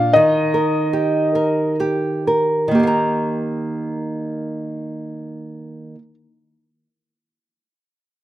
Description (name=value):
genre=children's music, lullaby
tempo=39-54 BPM (dotted quarters)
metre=6/8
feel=rubato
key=Eb major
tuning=A4 = 440 Hz
part: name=felt-muted upright piano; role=melody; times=0.0-1.7 s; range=Eb5 to F5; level=-17 LUFS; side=left 1 dB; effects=none
part: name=nylon-string guitar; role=accompaniment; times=0.0-6.1 s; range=Bb2 to Bb5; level=-19 LUFS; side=right 1 dB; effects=none
room=light reverb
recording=close, detailed microphones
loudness=-17 LUFS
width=side -13 dB against mid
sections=0.0-2.8 A section; 2.8-8.2 B section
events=slowing down 0.0-2.8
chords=0.2 Eb